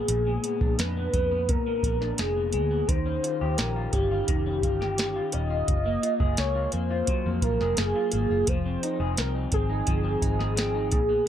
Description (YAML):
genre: indie pop, bedroom pop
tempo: 86 BPM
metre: 4/4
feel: straight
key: F minor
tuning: A4 = 440 Hz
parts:
  - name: warm velvety synth lead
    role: melody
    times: 0.0-11.2 s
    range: G4 to Eb5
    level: -28 LUFS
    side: right 1 dB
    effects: lush chorus
  - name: electric guitar through a small old amp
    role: accompaniment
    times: 0.0-11.3 s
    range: Bb2 to Ab4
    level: -31 LUFS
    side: left 4 dB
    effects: analog chorus, vibrato effect
  - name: vintage muted fingered electric bass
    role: bass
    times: 0.0-11.2 s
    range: Eb1 to F2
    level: -29 LUFS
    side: equal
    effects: none
  - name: soft vintage rhythm box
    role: drums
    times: 0.1-11.1 s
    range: hi-hat, kick drum, snare drum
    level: -27 LUFS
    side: equal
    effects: none
room: light reverb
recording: none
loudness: -23 LUFS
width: side -10 dB against mid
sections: 0.0-11.3 A section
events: none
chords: 0.0 Bb7b9; 2.9 Eb9; 5.7 Gbmaj9; 8.5 Fm7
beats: | 0.09 0.79 1.49 2.19 | 2.89 3.59 4.29 4.99 | 5.68 6.38 7.08 7.78 | 8.48 9.18 9.88 10.58 | 11.28